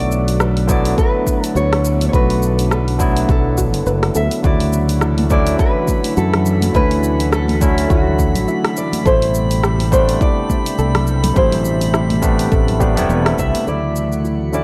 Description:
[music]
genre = sunset chillout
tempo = 104 BPM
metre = 4/4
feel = swing 57% on 16ths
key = D major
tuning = A4 = 440 Hz
[part]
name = nylon-string guitar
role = melody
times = 0.0-14.6 s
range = F#4 to E5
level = -24 LUFS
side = equal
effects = delay
[part]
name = barky tine electric piano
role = accompaniment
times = 0.0-14.6 s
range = B2 to F#4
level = -23 LUFS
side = equal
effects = tape echo
[part]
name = airy breathy pad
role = sustained chords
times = 0.0-14.6 s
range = E3 to G4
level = -29 LUFS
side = equal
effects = chorus
[part]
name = fingered electric bass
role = bass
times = 0.0-14.6 s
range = E1 to F#2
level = -20 LUFS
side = equal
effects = none
[part]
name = deep house drum kit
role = drums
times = 0.1-14.6 s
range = hi-hat, rim click, shaker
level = -27 LUFS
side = equal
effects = none
[part]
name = soft round pluck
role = arpeggios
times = 0.4-14.5 s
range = B3 to B4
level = -31 LUFS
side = equal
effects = none
[part]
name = electronic kick drum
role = drums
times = 0.7-13.5 s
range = none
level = -20 LUFS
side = equal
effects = none
[part]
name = drifting glass-harmonics texture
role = texture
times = 5.1-14.6 s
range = F#5 to B5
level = -32 LUFS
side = equal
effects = chorus, built-in reverb
[part]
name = congas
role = percussion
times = 5.2-13.6 s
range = none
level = -28 LUFS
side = equal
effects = none
[sound]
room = light reverb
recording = dark, warm production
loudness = -16 LUFS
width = mono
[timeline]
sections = 0.0-13.7 A section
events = none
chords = 0.0 Bm7; 4.4 Dmaj9; 9.1 Am9; 13.7 Dmaj9

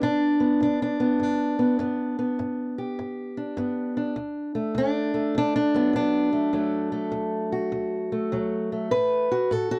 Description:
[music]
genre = acoustic country blues, solo or duo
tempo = 101 BPM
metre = 4/4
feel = swing 65% on 8ths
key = D major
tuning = A4 = 440 Hz
[part]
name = fingerpicked old ladder-braced acoustic guitar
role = solo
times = 0.0-9.8 s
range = D2 to B4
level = -25 LUFS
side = equal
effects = none
[sound]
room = moderate booth ambience, RT60 0.2 s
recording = dark, warm production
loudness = -25 LUFS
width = mono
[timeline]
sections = 0.0-9.8 A section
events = none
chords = 0.0 G; 4.2 D; 8.9 N.C.

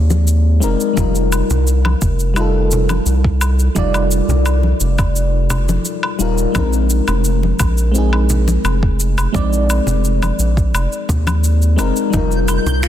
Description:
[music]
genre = sunset chillout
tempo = 86 BPM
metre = 4/4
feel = straight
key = unclear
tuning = A4 = 440 Hz
[part]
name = mellow FM electric piano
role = accompaniment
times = 0.0-12.9 s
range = G3 to D5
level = -19 LUFS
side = moving between left 7 dB and right 5 dB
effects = chorus, auto-pan, low-pass filter, ping-pong delay
[part]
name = round analog bass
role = bass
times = 0.0-12.9 s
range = Eb1 to Eb2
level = -15 LUFS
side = equal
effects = none
[part]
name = electronic shaker, woodblock and finger snaps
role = drums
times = 0.1-12.9 s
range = none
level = -24 LUFS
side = left 1 dB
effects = soft clipping on snare
[part]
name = congas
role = percussion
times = 0.1-12.8 s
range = none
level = -26 LUFS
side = left 3 dB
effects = none
[part]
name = electronic kick drum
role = drums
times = 1.0-12.3 s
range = none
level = -18 LUFS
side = equal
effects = none
[part]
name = soft round pluck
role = arpeggios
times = 12.1-12.9 s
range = Eb4 to F4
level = -26 LUFS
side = left 1 dB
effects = chorus, cassette tape, ping-pong delay
[part]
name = twinkling granular texture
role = texture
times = 12.3-12.9 s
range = G6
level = -26 LUFS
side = right 2 dB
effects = built-in reverb
[sound]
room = light reverb, digital ambience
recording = dense, heavily limited modern master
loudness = -13 LUFS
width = side -11 dB against mid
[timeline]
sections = 0.0-12.9 A section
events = none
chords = 0.0 Bb9sus4; 1.0 F9sus4; 6.6 Bb9sus4; 12.1 F9sus4

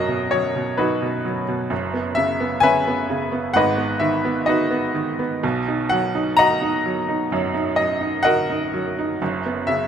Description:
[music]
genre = classical, lyrical solo piano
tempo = 64 BPM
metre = 4/4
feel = rubato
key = B major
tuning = A4 = 440 Hz
[part]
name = bright upright piano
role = solo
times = 0.0-9.9 s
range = F#1 to A#5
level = -18 LUFS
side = equal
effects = none
[sound]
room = light reverb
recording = close, detailed microphones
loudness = -19 LUFS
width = side -8 dB against mid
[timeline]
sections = 0.0-9.9 A section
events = none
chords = 0.0 Bmaj7; 1.7 F#7sus4; 3.6 G#m7; 5.4 Bmaj7; 9.2 F#7sus4

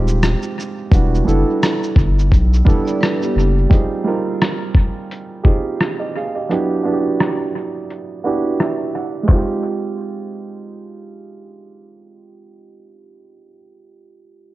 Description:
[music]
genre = lo-fi hip hop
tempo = 86 BPM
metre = 4/4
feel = swing 56% on 16ths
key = unclear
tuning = A4 = 435 Hz
[part]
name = warm upright piano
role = accompaniment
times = 0.0-14.5 s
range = Gb3 to Gb5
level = -20 LUFS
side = right 3 dB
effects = analog delay
[part]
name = saturated sub bass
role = bass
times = 0.0-3.7 s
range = Eb1 to B1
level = -15 LUFS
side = equal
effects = none
[part]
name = lo-fi sampler-style drum kit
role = drums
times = 0.1-9.5 s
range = handclaps, hi-hat, kick drum, rim click, shaker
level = -16 LUFS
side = equal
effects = overdrive
[part]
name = vibraphone with medium hard mallets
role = second line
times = 2.9-3.7 s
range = B3 to D5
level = -23 LUFS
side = equal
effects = analog delay
[sound]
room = light reverb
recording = echo-heavy mix, cassette tape, low-pass filter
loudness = -15 LUFS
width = side -16 dB against mid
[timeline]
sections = 0.0-9.3 A section; 9.3-12.1 B section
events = filter sweep 0.0-9.3; kick muted 6.5-9.3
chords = 0.0 Fm7; 0.9 Em7; 3.7 Fm7; 6.5 Em7; 9.3 Fm7

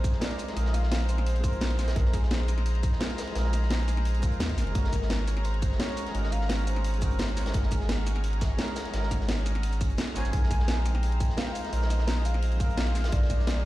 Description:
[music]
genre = liquid drum and bass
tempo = 172 BPM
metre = 4/4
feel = straight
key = unclear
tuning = A4 = 440 Hz
[part]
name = warm velvety synth lead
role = melody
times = 0.0-2.5, 4.6-8.1, 10.2-13.7 s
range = Ab4 to Ab5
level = -39 LUFS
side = left 1 dB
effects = chorus, tremolo, ping-pong delay
[part]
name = dark baby grand piano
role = accompaniment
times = 0.0-13.7 s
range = Ab3 to C5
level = -37 LUFS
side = right 2 dB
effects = ping-pong delay
[part]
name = rich chamber string section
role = sustained chords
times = 0.0-13.7 s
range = Db4 to Bb5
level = -39 LUFS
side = left 1 dB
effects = sidechain pumping
[part]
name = warm sub bass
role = bass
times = 0.0-13.7 s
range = F1 to Eb2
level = -27 LUFS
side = equal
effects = none
[part]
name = crunchy breakbeat drum kit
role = drums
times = 0.0-13.6 s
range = hi-hat, snare drum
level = -40 LUFS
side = left 1 dB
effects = high-pass filter on hats, studio reverb, high-pass filter on snare, high-pass filter on room
[part]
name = electronic kick drum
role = drums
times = 0.0-13.4 s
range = none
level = -28 LUFS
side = equal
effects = studio reverb
[part]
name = garage drum kit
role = drums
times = 0.0-13.5 s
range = hi-hat, shaker, snare drum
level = -34 LUFS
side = equal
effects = studio reverb
[sound]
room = studio reverb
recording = played on a big sound system in a bare room, large studio reverb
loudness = -25 LUFS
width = side -16 dB against mid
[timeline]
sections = 0.0-13.7 A section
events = kick drops out 10.0-10.3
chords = 0.0 Bb9sus4; 4.8 Ab9sus4; 10.3 Bb9sus4

